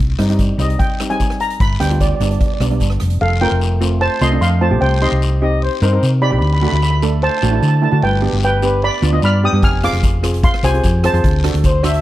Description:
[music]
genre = calypso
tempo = 150 BPM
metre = 4/4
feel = straight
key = C minor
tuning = A4 = 440 Hz
[part]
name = hollow-body short-scale fingered electric bass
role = bass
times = 0.0-12.0 s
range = F1 to D3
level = -16 LUFS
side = equal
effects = none
[part]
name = steel pan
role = accompaniment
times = 0.2-12.0 s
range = G3 to C5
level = -21 LUFS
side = right 2 dB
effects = none
[part]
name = street-band drum kit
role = drums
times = 0.2-3.2, 9.6-12.0 s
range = hi-hat, kick drum, rim click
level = -18 LUFS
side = equal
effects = none
[part]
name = guiro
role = percussion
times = 0.4-11.9 s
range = none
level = -30 LUFS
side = left 8 dB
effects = none
[part]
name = steel pan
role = melody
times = 0.6-12.0 s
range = A4 to F6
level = -19 LUFS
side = right 1 dB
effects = none
[part]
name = mellow horn section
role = second line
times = 5.4-6.1, 8.6-12.0 s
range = B4 to E5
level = -20 LUFS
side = left 3 dB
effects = none
[sound]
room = little or no reverb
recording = dry, close 1970s-style studio recording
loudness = -13 LUFS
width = side -15 dB against mid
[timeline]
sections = 0.0-3.2 A section; 3.2-12.0 B section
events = none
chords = 0.0 Cm; 1.6 G; 3.2 F; 4.8 Cm; 6.4 D; 8.0 G; 9.6 Fm; 11.2 D7

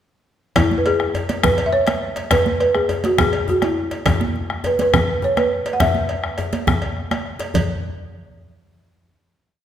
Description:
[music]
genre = west african traditional, West African drum ensemble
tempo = 138 BPM (dotted quarters)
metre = 12/8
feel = straight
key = E major pentatonic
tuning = A4 = 439 Hz
[part]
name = balafon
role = melody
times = 0.6-6.6 s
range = E4 to F#5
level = -19 LUFS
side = equal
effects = tape echo
[part]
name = bombo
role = percussion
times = 0.6-7.7 s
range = none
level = -22 LUFS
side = left 1 dB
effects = none
[part]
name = congas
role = percussion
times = 0.6-7.7 s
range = none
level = -26 LUFS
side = right 4 dB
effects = none
[part]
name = cowbell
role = percussion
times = 0.6-7.7 s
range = none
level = -29 LUFS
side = right 1 dB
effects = none
[part]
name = djembe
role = percussion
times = 0.6-7.7 s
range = none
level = -26 LUFS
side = left 4 dB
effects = none
[sound]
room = wet recital hall reverb, RT60 1.6 s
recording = none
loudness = -17 LUFS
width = side -10 dB against mid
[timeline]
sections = 0.6-7.5 A section; 7.5-9.3 final hit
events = none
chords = none

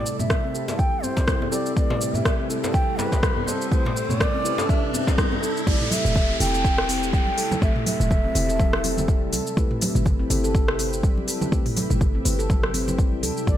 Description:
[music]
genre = afro house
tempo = 123 BPM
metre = 4/4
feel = swing 56% on 16ths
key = unclear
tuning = A4 = 440 Hz
[part]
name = bansuri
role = melody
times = 0.0-9.3, 13.5-13.6 s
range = B4 to G5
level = -28 LUFS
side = right 1 dB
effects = digital delay
[part]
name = ethereal airy pad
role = sustained chords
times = 0.0-13.6 s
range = C3 to B4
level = -32 LUFS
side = equal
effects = ensemble chorus, built-in reverb, sidechain pumping
[part]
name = riser and downlifter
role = sound effects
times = 1.4-9.6 s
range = none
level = -32 LUFS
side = equal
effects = none
[part]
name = afro-pop drum kit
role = drums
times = 0.1-13.6 s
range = cabasa, crash cymbal, hi-hat, rim click, toms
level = -28 LUFS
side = equal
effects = studio ambience
[part]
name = handpan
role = arpeggios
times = 0.2-13.6 s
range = G3 to A4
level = -30 LUFS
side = equal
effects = sidechain pumping, low-pass filter, digital delay
[part]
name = djembe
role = percussion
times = 0.2-5.4 s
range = none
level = -31 LUFS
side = left 2 dB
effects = none
[part]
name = electronic kick drum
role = drums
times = 0.3-13.6 s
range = none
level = -22 LUFS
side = equal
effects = studio ambience
[part]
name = mellow tine electric piano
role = stabs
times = 0.5-13.6 s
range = C4 to B4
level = -32 LUFS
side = left 3 dB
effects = sidechain pumping, digital delay
[part]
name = warm 808-style bass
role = bass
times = 5.7-13.6 s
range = E1 to E2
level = -26 LUFS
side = equal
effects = sidechain pumping
[part]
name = congas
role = percussion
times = 5.9-13.3 s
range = none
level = -30 LUFS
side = right 2 dB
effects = none
[sound]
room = light reverb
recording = none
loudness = -20 LUFS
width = side -11 dB against mid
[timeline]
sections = 0.0-5.7 A section; 5.7-13.6 B section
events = build-up 0.0-5.7; riser 1.4-5.7; drop 5.7-13.6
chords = 0.0 Am7; 1.8 Cmaj7; 5.7 Am7; 9.6 Cmaj7

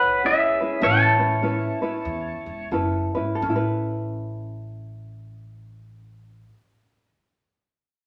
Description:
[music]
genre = Hawaiian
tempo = 83-106 BPM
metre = 4/4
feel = swing 62% on 8ths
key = A major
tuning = A4 = 440 Hz
[part]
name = pedal steel guitar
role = melody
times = 0.0-2.7 s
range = G#4 to A5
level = -23 LUFS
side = equal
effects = none
[part]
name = vibraphone with medium hard mallets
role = second line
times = 0.0-2.7 s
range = C#5 to E5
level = -35 LUFS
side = equal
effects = none
[part]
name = ukulele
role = accompaniment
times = 0.0-7.1 s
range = C#4 to B4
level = -29 LUFS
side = equal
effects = none
[part]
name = upright bass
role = bass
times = 0.0-6.4 s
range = E1 to E2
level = -32 LUFS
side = equal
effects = none
[sound]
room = wet large studio reverb, RT60 1.1 s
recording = none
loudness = -23 LUFS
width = mono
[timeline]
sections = 0.0-3.4 A section; 3.4-8.1 B section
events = slowing down 0.0-3.4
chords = 0.0 E6; 0.8 Aadd9

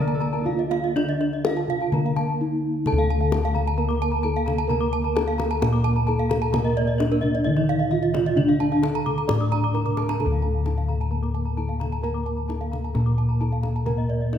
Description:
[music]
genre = Balinese gamelan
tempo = 131 BPM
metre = 4/4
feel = straight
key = D pelog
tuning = A4 = 440 Hz
[part]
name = gamelan-type bronze metallophone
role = melody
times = 0.0-14.4 s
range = D4 to D5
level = -27 LUFS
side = right 1 dB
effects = none
[part]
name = Celtic harp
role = second line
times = 0.0-3.2 s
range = D4 to D5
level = -36 LUFS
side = left 1 dB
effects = none
[part]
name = gamelan-type bronze metallophone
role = accompaniment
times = 0.0-14.4 s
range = D3 to D4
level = -31 LUFS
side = right 4 dB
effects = none
[part]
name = gamelan-type bronze metallophone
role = arpeggios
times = 0.0-14.4 s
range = D5 to Eb6+35c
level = -32 LUFS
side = left 5 dB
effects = none
[part]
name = gamelan-type bossed gongs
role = bass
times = 0.0-14.4 s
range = D2 to Bb4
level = -24 LUFS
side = left 2 dB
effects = none
[part]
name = gamelan-type bronze metallophone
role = arpeggios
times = 0.1-14.2 s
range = Bb4 to D6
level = -31 LUFS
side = right 6 dB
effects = none
[part]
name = kendang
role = percussion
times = 0.2-14.4 s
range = none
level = -30 LUFS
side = left 3 dB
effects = none
[sound]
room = moderate scoring stage reverb, RT60 1.6 s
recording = none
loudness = -20 LUFS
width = side -9 dB against mid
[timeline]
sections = 0.0-2.9 A section; 2.9-14.4 B section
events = drum fill 9.9-10.2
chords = none

